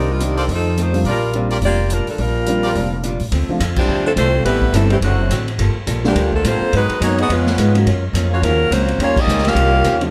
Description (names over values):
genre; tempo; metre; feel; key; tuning
jazz, big band swing; 212 BPM; 4/4; swing 59% on 8ths; unclear; A4 = 440 Hz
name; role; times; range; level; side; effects
warm saxophone section; melody; 0.0-10.0 s; D3 to F5; -22 LUFS; equal; none
archtop guitar, miked and amplified; accompaniment; 0.0-10.0 s; F2 to C5; -29 LUFS; equal; none
clear trumpet section; stabs; 0.0-2.7 s; Eb4 to D5; -27 LUFS; equal; none
upright bass; bass; 0.0-10.1 s; F1 to A2; -20 LUFS; equal; none
swinging big-band drum kit; drums; 0.2-10.1 s; crash cymbal, hi-hat, kick drum, ride cymbal, snare drum; -28 LUFS; equal; none
dark grand piano; accompaniment; 0.9-7.9, 10.0-10.1 s; F3 to Gb4; -26 LUFS; equal; none
muted trombone section; second line; 2.2-10.0 s; A2 to F4; -25 LUFS; equal; none
room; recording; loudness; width
light reverb; none; -17 LUFS; mono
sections
0.0-3.3 A section; 3.3-10.1 B section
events
band accent 3.7, 9.1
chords
0.5 F7; 1.0 Bb6; 3.3 Dm7; 4.5 Am7; 5.0 D7; 5.6 Gm9; 6.7 Abm7; 7.3 Db7; 7.9 Gbmaj7; 9.0 Eb13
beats
0.20 0.48 0.76 | 1.05 1.33 1.61 1.90 | 2.18 2.47 2.75 3.04 | 3.32 3.60 3.89 4.17 | 4.45 4.74 5.02 5.30 | 5.59 5.87 6.16 6.44 | 6.72 7.01 7.29 7.57 | 7.86 8.14 8.42 8.71 | 8.99 9.27 9.56 9.84